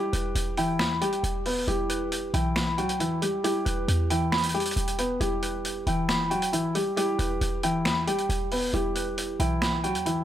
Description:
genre	hip hop, trap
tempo	136 BPM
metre	4/4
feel	half-time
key	E minor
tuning	A4 = 441 Hz
part	felt-muted upright piano	melody	0.0-10.2 s	E3 to B4	-28 LUFS	left 1 dB	ping-pong delay
part	mellow electric guitar	accompaniment	0.0-10.2 s	E4 to B5	-31 LUFS	right 2 dB	phaser
part	short 808-style bass	bass	0.0-10.2 s	E1 to E2	-30 LUFS	equal	none
part	vintage drum kit	drums	0.1-10.2 s	finger snaps, hi-hat, snare drum	-30 LUFS	equal	none
room	little or no reverb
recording	faint mains hum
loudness	-24 LUFS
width	side -11 dB against mid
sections	0.0-10.2 A section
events	none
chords	0.0 Em

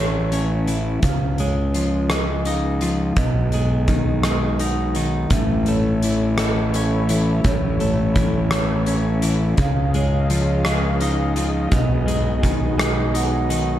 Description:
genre	post-rock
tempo	56 BPM (dotted quarters)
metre	6/8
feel	straight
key	A lydian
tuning	A4 = 440 Hz
part	twelve-string electric guitar	arpeggios	0.0-13.8 s	A2 to D#4	-23 LUFS	left 2 dB	slapback echo
part	vibraphone with soft mallets	arpeggios	0.0-13.8 s	C#5 to F#5	-28 LUFS	right 6 dB	slapback echo
part	fuzz fingered electric bass	bass	0.0-13.8 s	A1 to C#2	-22 LUFS	equal	overdrive
part	huge arena drum kit	drums	0.3-13.7 s	hi-hat, kick drum, rim click	-23 LUFS	equal	none
part	muted studio string section	sustained chords	5.3-13.8 s	A3 to E#5	-29 LUFS	left 1 dB	none
room	light reverb, small room ambience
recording	dark, warm production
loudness	-17 LUFS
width	side -12 dB against mid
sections	0.0-13.8 A section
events	none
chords	0.0 A; 1.0 C#add9; 3.2 B6; 5.3 A; 9.6 C#add9; 11.7 B6

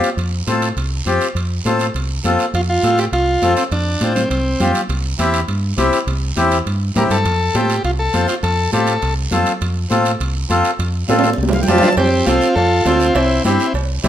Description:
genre	latin, cumbia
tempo	204 BPM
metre	4/4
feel	straight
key	F major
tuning	A4 = 443 Hz
part	accordion	accompaniment	0.0-14.1 s	C4 to A5	-18 LUFS	left 2 dB	none
part	guiro	percussion	0.0-14.1 s	none	-30 LUFS	right 6 dB	none
part	timbales and cowbell	percussion	0.0-14.1 s	none	-26 LUFS	right 6 dB	none
part	deep dub fingered electric bass	bass	0.2-14.1 s	C2 to A2	-19 LUFS	equal	none
part	congas	percussion	0.2-14.1 s	none	-24 LUFS	equal	none
part	combo organ	melody	2.5-4.7, 7.0-9.1, 11.8-13.7 s	C4 to Bb4	-17 LUFS	equal	none
room	moderate large studio reverb, RT60 0.9 s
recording	minimal, uncompressed stereo recording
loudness	-14 LUFS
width	side -11 dB against mid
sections	0.0-2.5 A section; 2.5-12.0 A section; 12.0-14.1 B section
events	drum fill 11.1-12.0; accordion fill 11.4-12.0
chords	0.0 F; 4.9 C; 7.3 F; 13.2 C

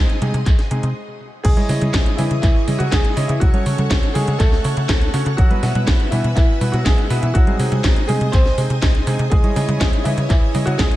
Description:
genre	italo disco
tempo	122 BPM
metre	4/4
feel	straight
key	C# minor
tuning	A4 = 440 Hz
part	bright baby grand piano	melody	0.0-11.0 s	E3 to B#4	-25 LUFS	equal	ping-pong delay, shimmer reverb
part	string machine, full ensemble	sustained chords	0.0-11.0 s	E4 to E6	-28 LUFS	equal	ensemble chorus, shimmer reverb
part	warm electric grand piano	stabs	0.0-10.7 s	G#3 to D#5	-28 LUFS	right 2 dB	shimmer reverb
part	tight sequencer bass	bass	0.0-10.9 s	B1 to C#3	-20 LUFS	equal	none
part	house drum kit	drums	0.1-11.0 s	congas, crash cymbal, handclaps, hi-hat, snare drum	-24 LUFS	right 1 dB	gated reverb
part	electronic kick drum	drums	0.5-10.9 s	none	-16 LUFS	equal	none
room	little or no reverb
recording	none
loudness	-15 LUFS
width	side -15 dB against mid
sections	0.0-1.4 A section; 1.4-11.0 B section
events	stop 1.0-1.4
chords	0.0 G#/B#; 1.4 C#madd9; 3.4 F#m/C#; 5.4 Bsus4; 7.3 G#/B#; 9.3 C#madd9

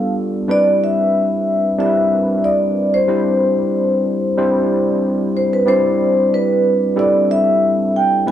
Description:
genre	soul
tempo	92 BPM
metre	4/4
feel	swing 54% on 16ths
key	C major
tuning	A4 = 440 Hz
part	vibraphone with soft mallets	melody	0.0-8.3 s	B4 to G#5	-16 LUFS	left 1 dB	none
part	overdriven tine electric piano	accompaniment	0.0-8.3 s	G3 to D5	-17 LUFS	equal	analog chorus
room	light reverb, small room ambience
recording	none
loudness	-14 LUFS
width	side -10 dB against mid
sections	0.0-5.7 A section; 5.7-8.3 B section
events	none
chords	0.5 Cmaj9

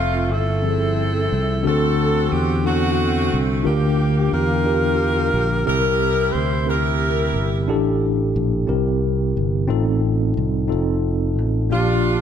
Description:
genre	slow gospel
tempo	60 BPM (dotted quarters)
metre	6/8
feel	straight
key	F major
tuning	A4 = 441 Hz
part	bright saxophone section	melody	0.0-7.7, 11.7-12.2 s	A3 to C5	-21 LUFS	equal	none
part	tine electric piano	accompaniment	0.0-12.2 s	A2 to E5	-22 LUFS	left 1 dB	medium stereo tremolo
part	fingered electric bass	bass	0.0-12.2 s	F1 to E2	-21 LUFS	right 1 dB	none
room	light reverb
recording	none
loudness	-17 LUFS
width	side -8 dB against mid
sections	0.0-12.2 A section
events	none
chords	0.0 Fmaj7; 1.7 D7; 3.7 Gm7/D; 5.7 C7; 7.7 A7sus4; 8.7 C7; 9.7 F7/A; 10.7 F7

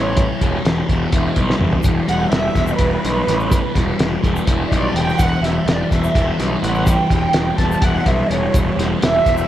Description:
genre	psychedelic rock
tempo	251 BPM (eighths)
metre	7/8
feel	straight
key	E dorian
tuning	A4 = 440 Hz
part	warm chamber string section	sustained chords	0.0-9.5 s	B4 to A5	-21 LUFS	right 3 dB	none
part	fuzz guitar	riff	0.0-9.5 s	E3 to E4	-20 LUFS	left 1 dB	distortion, phaser
part	fuzz picked electric bass	bass	0.0-9.4 s	E1 to B1	-21 LUFS	equal	overdrive
part	cloth-damped thuddy drum kit	drums	0.2-9.4 s	hi-hat, kick drum, snare drum, toms	-19 LUFS	equal	none
part	egg shaker	percussion	1.8-9.5 s	none	-40 LUFS	left 7 dB	none
room	light reverb, studio reverb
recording	none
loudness	-15 LUFS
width	side -12 dB against mid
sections	0.0-9.5 A section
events	string section solo 0.0-9.5; drum fill 1.5-1.8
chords	0.0 Em

